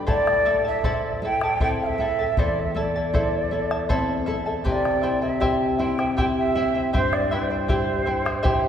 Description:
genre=andean folk, Andean ensemble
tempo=79 BPM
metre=3/4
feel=straight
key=A minor pentatonic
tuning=A4 = 439 Hz
part: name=charango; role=accompaniment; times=0.0-8.7 s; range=E4 to A5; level=-27 LUFS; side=equal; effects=none
part: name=nylon-string guitar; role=accompaniment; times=0.0-8.7 s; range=E2 to G4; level=-27 LUFS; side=left 1 dB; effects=none
part: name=mellow quena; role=melody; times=0.1-8.7 s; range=C5 to G5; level=-24 LUFS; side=right 1 dB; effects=none
part: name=bombo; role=percussion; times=0.1-8.6 s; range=none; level=-28 LUFS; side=left 1 dB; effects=none
room=wet church reverb, RT60 3.1 s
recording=recorded in a church or concert hall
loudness=-20 LUFS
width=side -9 dB against mid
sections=0.0-8.7 A section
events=none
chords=0.1 Am; 4.7 C

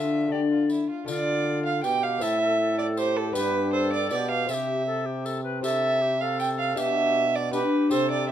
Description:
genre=classical, renaissance-style consort dance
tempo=158 BPM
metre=3/4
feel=straight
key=D dorian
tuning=A4 = 440 Hz
part: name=bright alto recorder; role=melody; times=0.0-8.3 s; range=F4 to E5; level=-32 LUFS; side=left 4 dB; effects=none
part: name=rich violin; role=second line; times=0.0-8.3 s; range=E4 to G5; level=-26 LUFS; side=right 3 dB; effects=none
part: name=lute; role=accompaniment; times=0.0-8.3 s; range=G2 to G4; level=-28 LUFS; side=left 4 dB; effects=none
part: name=clear trombone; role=bass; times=0.0-8.3 s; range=G2 to D3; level=-31 LUFS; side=right 1 dB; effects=none
part: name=tambourine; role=percussion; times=0.7-8.1 s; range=none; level=-40 LUFS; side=left 4 dB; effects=none
room=light reverb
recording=dark, warm production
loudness=-22 LUFS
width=side -10 dB against mid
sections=0.0-1.1 A section; 1.1-8.3 A section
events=none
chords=0.0 Dm; 2.2 Am; 3.4 G; 4.5 C; 6.8 G/B

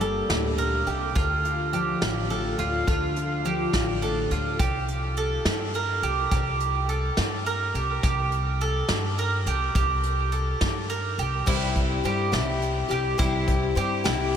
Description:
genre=indie folk with a building arrangement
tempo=70 BPM (dotted quarters)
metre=6/8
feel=straight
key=unclear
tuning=A4 = 439 Hz
part: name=fingerpicked steel-string acoustic guitar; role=accompaniment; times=0.0-4.6 s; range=G2 to F4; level=-30 LUFS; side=left 3 dB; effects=wide subtle chorus
part: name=mandolin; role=arpeggios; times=0.0-14.4 s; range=E4 to Bb4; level=-27 LUFS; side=right 4 dB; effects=analog delay
part: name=upright bass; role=bass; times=0.0-14.4 s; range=G1 to G2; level=-28 LUFS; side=equal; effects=none
part: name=soft brush drum kit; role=drums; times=0.0-14.4 s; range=crash cymbal, hi-hat, kick drum, snare drum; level=-29 LUFS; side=equal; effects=none
part: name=picked twelve-string acoustic guitar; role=accompaniment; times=11.5-14.4 s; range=C3 to G4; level=-27 LUFS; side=left 6 dB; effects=none
room=moderate huge ambient reverb, RT60 7.9 s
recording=dreamy mix soaked in reverb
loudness=-23 LUFS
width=side -8 dB against mid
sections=0.0-11.5 A section; 11.5-14.4 B section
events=none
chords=0.0 Gm; 1.2 Dm; 4.6 C5; 11.5 C

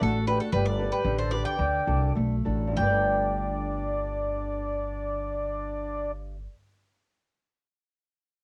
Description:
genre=greek folk, Greek bouzouki band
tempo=93-117 BPM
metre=2/4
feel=straight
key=G major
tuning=A4 = 440 Hz
part: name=Greek bouzouki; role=melody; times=0.0-6.4 s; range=A4 to G5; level=-31 LUFS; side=equal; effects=none
part: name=mellow accordion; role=second line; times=0.0-6.1 s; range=D4 to D5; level=-35 LUFS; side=equal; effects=cassette tape
part: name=flamenco guitar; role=accompaniment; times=0.0-6.5 s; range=G2 to D5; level=-33 LUFS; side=equal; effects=cassette tape
part: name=upright bass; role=bass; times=0.0-6.5 s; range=G1 to D2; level=-32 LUFS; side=equal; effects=none
room=light reverb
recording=home recording on cassette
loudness=-28 LUFS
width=mono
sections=0.0-2.8 A section; 2.8-5.4 B section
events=slowing down 0.5-2.8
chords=0.0 D; 0.5 Gadd9; 1.6 D; 2.8 Gadd9

